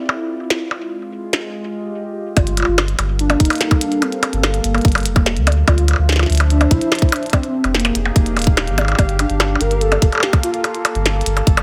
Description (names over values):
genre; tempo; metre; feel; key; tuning
IDM; 145 BPM; 4/4; straight; G minor; A4 = 439 Hz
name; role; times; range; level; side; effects
warbly tape-like pad; sustained chords; 0.0-11.6 s; F3 to F5; -28 LUFS; equal; chorus, built-in reverb
glitchy drum kit; drums; 0.1-11.6 s; hi-hat, percussion blips, snare drum; -21 LUFS; equal; studio reverb
warbly nostalgic lead; melody; 2.4-10.8 s; Bb3 to Bb4; -24 LUFS; equal; tremolo, ensemble chorus, vintage 12-bit sampler grit, tape echo
warm sub bass; bass; 2.4-11.6 s; Eb1 to D2; -20 LUFS; equal; none
electronic kick drum; drums; 2.4-11.6 s; none; -16 LUFS; equal; studio reverb
room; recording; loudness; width
light reverb, digital ambience; none; -17 LUFS; mono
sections
0.0-2.4 A section; 2.4-11.6 B section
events
none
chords
0.0 Dm9; 0.7 Fm9; 2.4 Gm9; 5.5 Dm9; 7.3 Fm9; 9.0 Gm9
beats
0.30 | 0.71 1.12 1.54 1.95 | 2.37 2.78 3.19 3.61 | 4.02 4.43 4.85 5.26 | 5.68 6.09 6.50 6.92 | 7.33 7.75 8.16 8.57 | 8.99 9.40 9.81 10.23 | 10.64 11.06 11.47